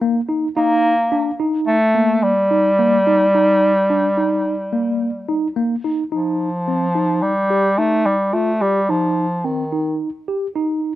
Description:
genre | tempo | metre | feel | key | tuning
progressive instrumental, progressive | 108 BPM | 5/4 | straight | C dorian | A4 = 440 Hz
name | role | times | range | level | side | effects
tine electric piano | arpeggios | 0.0-10.9 s | Bb3 to G4 | -20 LUFS | equal | medium stereo tremolo, slapback echo
clear bass clarinet | melody | 0.6-10.0 s | Eb3 to Bb3 | -16 LUFS | equal | none
room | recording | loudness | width
little or no reverb | recorded outdoors, with no room sound | -15 LUFS | side -14 dB against mid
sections
0.0-6.1 A section; 6.1-11.0 B section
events
none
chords
0.0 Eb; 6.1 Cm (rootless)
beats
0.01 | 0.57 1.12 1.68 2.23 2.79 | 3.34 3.90 4.45 5.00 5.56 | 6.11 6.67 7.22 7.78 8.34 | 8.89 9.45 10.00 10.56

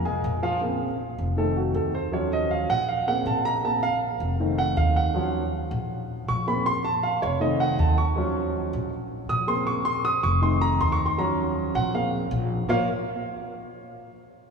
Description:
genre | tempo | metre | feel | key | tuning
jazz | 159 BPM | 4/4 | straight | Bb harmonic minor | A4 = 444 Hz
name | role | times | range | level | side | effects
warm baby grand piano | accompaniment | 0.0-12.9 s | Db3 to Eb6 | -24 LUFS | right 1 dB | none
upright bass | bass | 0.0-12.9 s | F1 to Eb2 | -28 LUFS | equal | none
room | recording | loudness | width
wet church reverb, RT60 3.6 s | recorded in a church or concert hall | -22 LUFS | side -5 dB against mid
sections
0.6-12.7 A section; 12.7-14.2 B section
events
grand piano solo 0.6-12.7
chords
0.0 Bbsus2; 0.6 Bbmadd9; 1.4 F7; 2.1 Ebm9; 2.9 Bbmadd9; 4.4 F7; 5.1 Ebm9; 5.9 Bbmadd9; 7.4 F7; 8.2 Ebm9; 8.9 Bbmadd9; 10.4 F7; 11.2 Ebm9; 11.9 Bbmadd9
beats
0.24 | 0.62 1.00 1.37 1.75 | 2.13 2.51 2.88 3.26 | 3.64 4.02 4.39 4.77 | 5.15 5.53 5.90 6.28 | 6.66 7.04 7.41 7.79 | 8.17 8.54 8.92 9.30 | 9.68 10.05 10.43 10.81 | 11.18 11.56 11.94 12.31 | 12.69

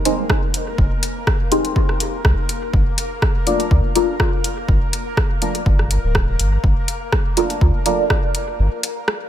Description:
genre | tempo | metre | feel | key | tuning
dub techno | 123 BPM | 4/4 | swing 54% on 16ths | unclear | A4 = 442 Hz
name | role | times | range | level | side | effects
bubbling stepped-filter texture | texture | 0.0-9.3 s | Bb3 to Bb4 | -29 LUFS | left 3 dB | chorus, built-in reverb, sidechain pumping
deep mellow chord stab | stabs | 0.1-8.0 s | Eb4 to D5 | -22 LUFS | equal | chorus, phaser, sidechain pumping, dub echo
deep house drum kit | drums | 0.1-9.2 s | hi-hat, rim click | -22 LUFS | equal | overdrive, small room ambience
electronic kick drum | drums | 0.3-8.2 s | none | -19 LUFS | equal | overdrive, small room ambience
warm sub bass | bass | 0.8-8.7 s | D1 to D2 | -17 LUFS | equal | sidechain pumping
room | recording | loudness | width
digital ambience | none | -16 LUFS | side -11 dB against mid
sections
0.0-9.3 A section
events
break 8.6-9.3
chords
0.0 Fm9 (rootless); 2.7 Gm9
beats
0.30 | 0.78 1.27 1.76 2.25 | 2.73 3.22 3.71 4.20 | 4.69 5.17 5.66 6.15 | 6.64 7.13 7.61 8.10 | 8.59 9.08

